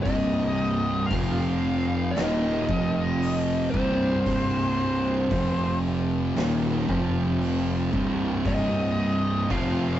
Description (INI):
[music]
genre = stoner and doom metal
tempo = 57 BPM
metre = 4/4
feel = straight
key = C minor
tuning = A4 = 441 Hz
[part]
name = fuzz lead guitar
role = melody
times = 0.0-10.0 s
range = C5 to F5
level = -29 LUFS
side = left 1 dB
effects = wah, distortion
[part]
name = thick fuzz guitar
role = riff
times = 0.0-10.0 s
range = C2 to F3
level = -29 LUFS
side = left 3 dB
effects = distortion
[part]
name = thick fuzz guitar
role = riff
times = 0.0-10.0 s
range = C2 to F3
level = -26 LUFS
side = right 2 dB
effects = distortion
[part]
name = fuzz fingered electric bass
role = bass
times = 0.0-10.0 s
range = C1 to F1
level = -31 LUFS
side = equal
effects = overdrive, tube saturation
[part]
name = oversized low-tuned drum kit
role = drums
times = 0.1-9.8 s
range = hi-hat, kick drum, snare drum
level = -33 LUFS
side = equal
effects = none
[sound]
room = light reverb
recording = rough rehearsal-room recording, warm saturation, nothing above 7.8 kHz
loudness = -22 LUFS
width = side -12 dB against mid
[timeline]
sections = 0.0-10.0 A section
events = none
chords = 0.0 Cm; 1.1 F5; 2.2 Eb5; 2.7 F5; 3.7 C5; 5.3 F5; 6.4 Eb5; 6.9 F5; 7.9 Cm